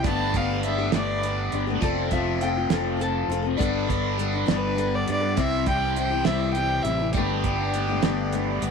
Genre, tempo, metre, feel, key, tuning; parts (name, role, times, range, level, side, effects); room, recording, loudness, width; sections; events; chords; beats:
folk rock and heartland rock; 68 BPM (dotted quarters); 6/8; straight; G mixolydian; A4 = 442 Hz
rich fiddle; melody; 0.0-1.6, 4.5-8.6 s; G4 to A5; -28 LUFS; right 1 dB
picked steel-string acoustic guitar; accompaniment; 0.0-8.7 s; G2 to A4; -28 LUFS; left 11 dB
biting overdriven guitar; riff; 0.0-8.7 s; C3 to C5; -28 LUFS; right 2 dB; phaser
fingered electric bass; bass; 0.0-8.7 s; F1 to G2; -29 LUFS; right 2 dB
damped 70s drum kit; drums; 0.0-8.7 s; hi-hat, kick drum, snare drum; -27 LUFS; right 5 dB
electric slide guitar; second line; 1.8-4.2 s; D5 to A5; -31 LUFS; left 5 dB
light reverb, studio ambience; 1960s-style stereo; -22 LUFS; side -5 dB against mid
0.0-8.7 A section
0.0 Gadd9; 1.8 F; 3.6 Gadd9; 5.4 C; 7.2 Gadd9
| 0.04 0.93 | 1.82 2.71 | 3.60 4.49 | 5.38 6.26 | 7.15 8.04